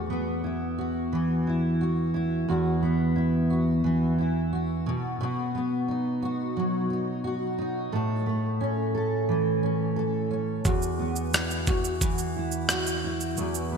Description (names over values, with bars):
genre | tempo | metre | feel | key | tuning
acoustic pop | 88 BPM | 4/4 | straight | unclear | A4 = 440 Hz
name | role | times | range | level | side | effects
fingerpicked steel-string acoustic guitar | accompaniment | 0.0-13.8 s | E2 to A4 | -25 LUFS | right 1 dB | double-tracked left and right
breakbeat sampler-style drum kit | drums | 10.7-13.7 s | kick drum, rim click, shaker | -27 LUFS | equal | gated reverb
room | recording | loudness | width
wet lush hall reverb, RT60 3.0 s | bright 1980s-style digital production | -24 LUFS | side -6 dB against mid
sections
0.0-13.8 A section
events
none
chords
0.0 Esus2; 4.9 B; 7.9 A; 10.7 Esus2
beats
0.44 1.12 1.80 | 2.48 3.16 3.84 4.52 | 5.20 5.88 6.56 7.24 | 7.92 8.61 9.29 9.97 | 10.65 11.33 12.01 12.70 | 13.38